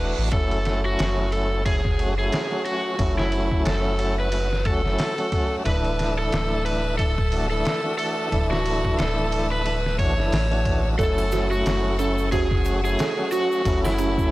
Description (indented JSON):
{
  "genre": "trip hop",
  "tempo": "90 BPM",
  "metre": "4/4",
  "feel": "swing 58% on 16ths",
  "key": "F# minor",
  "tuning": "A4 = 440 Hz",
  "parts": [
    { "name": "overdriven slide guitar", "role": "melody", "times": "0.0-14.3 s", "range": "E4 to C#5", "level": "-26 LUFS", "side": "equal", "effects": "tape echo" },
    { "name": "tonewheel organ", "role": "accompaniment", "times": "0.0-14.3 s", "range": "E3 to F#4", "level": "-27 LUFS", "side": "equal", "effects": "overdrive, tremolo, tape echo" },
    { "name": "soft dub sub bass", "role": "bass", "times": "0.0-14.3 s", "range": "D1 to A1", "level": "-25 LUFS", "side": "equal", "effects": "none" },
    { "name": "warm symphonic string section", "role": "sustained chords", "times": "0.3-14.3 s", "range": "A3 to E6", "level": "-35 LUFS", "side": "left 1 dB", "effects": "none" },
    { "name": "trip hop sampler-style drum kit", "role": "drums", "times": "0.3-14.3 s", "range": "hi-hat, kick drum, ride cymbal, snare drum", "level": "-27 LUFS", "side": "equal", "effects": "none" },
    { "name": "dark detuned synth bell", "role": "arpeggios", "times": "11.0-14.3 s", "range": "C#4 to A4", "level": "-28 LUFS", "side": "right 4 dB", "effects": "chorus, tape echo" },
    { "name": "egg shaker and triangle", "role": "percussion", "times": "11.0-14.3 s", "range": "none", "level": "-45 LUFS", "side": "right 3 dB", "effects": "none" }
  ],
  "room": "little or no reverb",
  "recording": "dry, gritty hardware recording",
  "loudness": "-20 LUFS",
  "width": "side -18 dB against mid",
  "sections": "0.3-14.3 A section",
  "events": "none",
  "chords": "0.3 F#m7; 5.7 Dsus2; 11.0 F#m7"
}